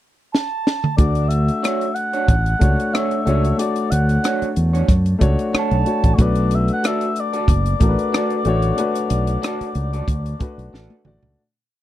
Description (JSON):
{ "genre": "lush 1970s-style soul", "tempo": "92 BPM", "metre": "4/4", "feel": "swing 54% on 16ths", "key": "D major", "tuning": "A4 = 440 Hz", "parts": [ { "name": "mellow oboe", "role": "melody", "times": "0.3-10.8 s", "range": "C#5 to A5", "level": "-24 LUFS", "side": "left 2 dB", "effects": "none" }, { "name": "compact cocktail drum kit", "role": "drums", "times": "0.3-11.4 s", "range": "hi-hat, kick drum, rim click, snare drum, toms", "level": "-18 LUFS", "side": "equal", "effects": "none" }, { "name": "clear baby grand piano", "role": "accompaniment", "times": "1.0-11.4 s", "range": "A3 to D5", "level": "-23 LUFS", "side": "left 2 dB", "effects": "none" }, { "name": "fingered electric bass", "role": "bass", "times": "1.0-11.3 s", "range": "F#1 to F#2", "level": "-18 LUFS", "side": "equal", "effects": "none" }, { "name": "electric guitar through a small old amp", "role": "riff", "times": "1.6-10.9 s", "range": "D4 to D5", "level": "-25 LUFS", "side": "right 7 dB", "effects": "none" } ], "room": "little or no reverb", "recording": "dry, close 1970s-style studio recording", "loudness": "-16 LUFS", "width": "side -13 dB against mid", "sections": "0.0-1.0 pickup bar; 1.0-11.4 verse", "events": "drum fill 0.3-1.0, 10.7-11.4; fade-out 8.8-11.4", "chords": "0.0 N.C.; 1.0 Dmaj7; 6.2 Bm7" }